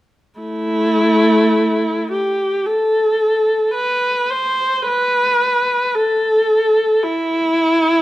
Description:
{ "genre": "classical, free, expressive piece for unaccompanied viola", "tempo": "55 BPM", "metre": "4/4", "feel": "rubato", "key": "A minor", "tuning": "A4 = 440 Hz", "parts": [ { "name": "warm viola", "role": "solo", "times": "0.4-8.0 s", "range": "A3 to C5", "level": "-14 LUFS", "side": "equal", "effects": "none" } ], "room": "light reverb", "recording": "none", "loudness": "-14 LUFS", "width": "side -15 dB against mid", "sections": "0.4-8.0 A section", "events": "none", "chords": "none" }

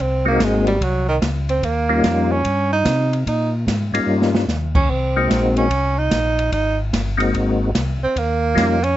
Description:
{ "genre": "soul jazz organ trio", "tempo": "147 BPM", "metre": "4/4", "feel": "swing 65% on 8ths", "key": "unclear", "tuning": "A4 = 439 Hz", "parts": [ { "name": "breathy tenor saxophone", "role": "melody", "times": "0.0-9.0 s", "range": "Eb3 to Eb4", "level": "-20 LUFS", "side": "right 3 dB", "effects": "none" }, { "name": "mellow tonewheel organ", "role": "bass", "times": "0.0-9.0 s", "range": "G1 to C3", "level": "-21 LUFS", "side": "equal", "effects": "overdrive, chorus vibrato, slow rotary speaker" }, { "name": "open jazz drum kit", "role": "drums", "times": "0.0-8.9 s", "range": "crash cymbal, hi-hat, kick drum, ride cymbal, snare drum", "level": "-24 LUFS", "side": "right 1 dB", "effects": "none" }, { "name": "percussive tonewheel organ", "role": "melody", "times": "0.3-8.8 s", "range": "G3 to Gb4", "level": "-18 LUFS", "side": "left 3 dB", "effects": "slow rotary speaker, chorus vibrato" } ], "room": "light reverb", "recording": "nothing above 7.9 kHz", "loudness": "-16 LUFS", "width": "side -13 dB against mid", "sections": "0.0-9.0 A section", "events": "tenor saxophone solo 0.0-9.0; drum fill 4.1-4.5", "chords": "0.0 Ab7; 1.6 Eb7; 4.9 Ab7; 8.2 Eb7" }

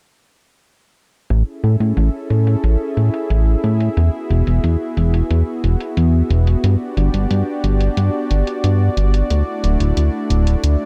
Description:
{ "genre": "synthwave", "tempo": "90 BPM", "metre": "4/4", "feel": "straight", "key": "A major", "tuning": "A4 = 440 Hz", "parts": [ { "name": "warm analog pad", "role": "sustained chords", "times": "1.3-10.9 s", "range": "A3 to E5", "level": "-25 LUFS", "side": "equal", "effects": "chorus" }, { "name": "fat analog bass", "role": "bass", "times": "1.3-10.8 s", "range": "D1 to A2", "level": "-17 LUFS", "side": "equal", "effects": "none" }, { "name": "electronic hi-hat", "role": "drums", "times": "1.3-10.8 s", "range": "none", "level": "-34 LUFS", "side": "equal", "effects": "low-pass filter on hats, low-pass filter on room" } ], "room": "little or no reverb", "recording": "none", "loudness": "-17 LUFS", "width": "mono", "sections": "1.3-10.9 A section", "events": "filter sweep on drum 1.3-10.9", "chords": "1.3 Amaj7; 4.0 Eadd9; 6.6 Gmaj7; 9.3 Dadd9" }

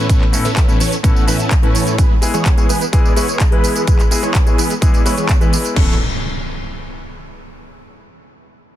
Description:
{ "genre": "EDM, festival progressive house", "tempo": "127 BPM", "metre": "4/4", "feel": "straight", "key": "A major", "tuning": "A4 = 439 Hz", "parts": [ { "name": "warm grand piano", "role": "accompaniment", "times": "0.0-5.9 s", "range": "A2 to B4", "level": "-22 LUFS", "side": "left 3 dB", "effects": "sidechain pumping, digital delay" }, { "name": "big supersaw lead", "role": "riff", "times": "0.0-5.9 s", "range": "E3 to F#5", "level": "-20 LUFS", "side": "right 1 dB", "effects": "phaser, sidechain pumping, low-pass filter, digital delay" }, { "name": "big-room dance drum kit", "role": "drums", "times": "0.1-5.9 s", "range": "crash cymbal, handclaps, hi-hat, tambourine", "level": "-23 LUFS", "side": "right 2 dB", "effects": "none" }, { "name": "electronic kick drum", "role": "drums", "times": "0.1-5.9 s", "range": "none", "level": "-13 LUFS", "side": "equal", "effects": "none" }, { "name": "saturated sub bass", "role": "bass", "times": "5.8-6.0 s", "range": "A1", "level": "-24 LUFS", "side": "equal", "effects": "none" }, { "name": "impact", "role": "sound effects", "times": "5.8-7.7 s", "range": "none", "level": "-26 LUFS", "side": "equal", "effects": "none" } ], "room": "little or no reverb", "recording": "dense, heavily limited modern master", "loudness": "-12 LUFS", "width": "side -13 dB against mid", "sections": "0.0-5.8 A section; 5.8-7.7 B section", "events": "filter sweep on supersaw synth 0.0-5.8", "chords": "0.0 Aadd9; 2.0 E; 5.8 Aadd9" }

